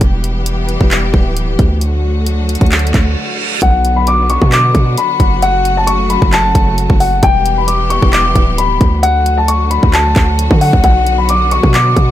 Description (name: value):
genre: hip hop, trap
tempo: 133 BPM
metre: 4/4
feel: half-time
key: B minor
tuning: A4 = 440 Hz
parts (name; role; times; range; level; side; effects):
- clear studio string section; sustained chords; 0.0-12.1 s; C#3 to G4; -19 LUFS; left 1 dB; none
- hard-hitting 808-style bass; bass; 0.0-12.1 s; D1 to D3; -14 LUFS; equal; none
- trap drum kit; drums; 0.0-12.1 s; handclaps, hi-hat, kick drum; -13 LUFS; equal; none
- reverse cymbal; sound effects; 2.9-3.6 s; none; -20 LUFS; right 6 dB; none
- dark baby grand piano; melody; 3.6-12.1 s; F#5 to D6; -13 LUFS; left 2 dB; low-pass filter, digital delay
room: little or no reverb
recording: none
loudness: -10 LUFS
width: side -12 dB against mid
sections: 0.0-3.6 A section; 3.6-12.1 B section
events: reverse cymbal 2.9-3.6; break 3.2-3.6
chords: 0.0 Em; 1.8 D; 3.6 Bm; 5.4 F#m; 7.2 Em; 9.0 D; 10.8 Bm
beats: | 0.01 0.46 0.91 1.36 | 1.81 2.27 2.72 3.17 | 3.62 4.07 4.52 4.97 | 5.42 5.88 6.33 6.78 | 7.23 7.68 8.13 8.58 | 9.03 9.48 9.94 10.39 | 10.84 11.29 11.74